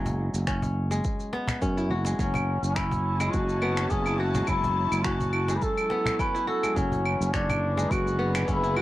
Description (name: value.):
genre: organic downtempo.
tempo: 105 BPM.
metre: 4/4.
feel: swing 55% on 16ths.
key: F# minor.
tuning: A4 = 440 Hz.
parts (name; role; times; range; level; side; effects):
kora; arpeggios; 0.0-8.8 s; F#3 to C#5; -32 LUFS; left 1 dB; low-pass filter, cassette tape, analog delay, plate reverb.
sustaining fretless electric bass; bass; 0.0-8.8 s; F#1 to F#2; -28 LUFS; equal; none.
electronic shaker, finger snaps and claves; drums; 0.1-8.8 s; none; -33 LUFS; right 2 dB; none.
cajon; percussion; 0.1-8.8 s; none; -34 LUFS; left 1 dB; none.
electronic kick drum; drums; 0.5-8.6 s; none; -32 LUFS; equal; none.
warm duduk; melody; 2.2-8.8 s; C#4 to B4; -28 LUFS; left 1 dB; vintage 12-bit sampler grit, cassette tape, plate reverb.
warm studio string section; sustained chords; 2.2-8.8 s; D3 to A5; -35 LUFS; equal; sidechain pumping, cassette tape, plate reverb.
room: moderate small room reverb, RT60 0.5 s.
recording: home recording on cassette.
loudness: -24 LUFS.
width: side -15 dB against mid.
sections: 0.0-8.8 A section.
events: none.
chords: 0.0 Eadd9/F#; 2.2 F#m7; 6.8 E9/F#.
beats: 0.48 1.05 1.62 | 2.19 2.76 3.34 3.91 | 4.48 5.05 5.62 6.19 | 6.76 7.34 7.91 8.48.